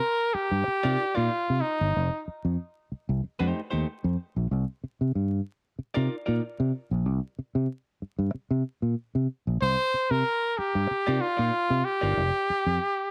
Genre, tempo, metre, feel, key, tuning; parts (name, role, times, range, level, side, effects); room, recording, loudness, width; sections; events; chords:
funk; 94 BPM; 4/4; straight; C dorian; A4 = 442 Hz
warm trumpet; melody; 0.0-2.3, 9.6-13.1 s; Eb4 to C5; -28 LUFS; equal
fingered electric bass; bass; 0.3-12.8 s; F1 to C3; -28 LUFS; equal
semi-hollow electric guitar; accompaniment; 0.8-6.4, 11.1-12.2 s; A3 to D5; -36 LUFS; equal; cassette tape
light reverb; home recording on cassette, vinyl crackle; -28 LUFS; mono
0.0-13.1 A section
0.0 Cm11; 1.9 F9; 4.5 Cm11; 12.2 Fsus2